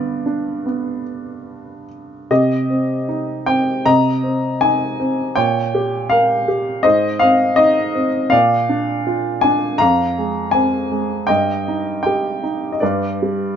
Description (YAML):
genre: classical, lyrical solo piano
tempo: 80 BPM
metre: 4/4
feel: uneven beats, rubato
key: C minor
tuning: A4 = 440 Hz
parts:
  - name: warm upright piano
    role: solo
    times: 0.0-13.6 s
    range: F2 to Bb5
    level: -15 LUFS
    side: equal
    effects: none
room: light reverb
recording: nothing above 7.6 kHz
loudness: -15 LUFS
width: side -8 dB against mid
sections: 0.0-2.3 A section; 2.3-13.6 B section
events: none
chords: 0.0 G; 2.3 Cm; 3.9 Ab/C; 5.4 Bbm6; 6.8 Ab; 8.3 Bb; 9.8 Fm; 11.3 Eb/G; 12.8 G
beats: 0.65 1.48 | 2.30 3.09 3.85 4.62 | 5.37 6.11 6.85 7.58 | 8.32 9.06 9.80 10.54 | 11.29 12.05 12.82